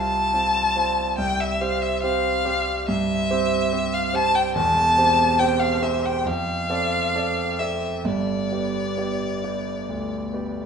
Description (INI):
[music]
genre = classical, romantic duo for violin and grand piano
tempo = 64-73 BPM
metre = 4/4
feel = rubato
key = C major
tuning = A4 = 438 Hz
[part]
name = rich violin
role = melody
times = 0.0-10.7 s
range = D5 to A5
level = -22 LUFS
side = left 2 dB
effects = none
[part]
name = warm grand piano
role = accompaniment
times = 0.0-10.7 s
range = E1 to D5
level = -24 LUFS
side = right 4 dB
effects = none
[sound]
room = moderate recital hall reverb, RT60 1.4 s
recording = dark, warm production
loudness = -20 LUFS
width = side -6 dB against mid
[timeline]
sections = 0.0-10.7 A section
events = none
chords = 0.0 F/C; 1.2 C; 4.5 C/E; 6.2 Dm7/F; 8.0 G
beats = 0.33 | 1.18 2.01 2.87 3.71 | 4.54 5.39 6.25 7.14 | 8.04 8.97 9.88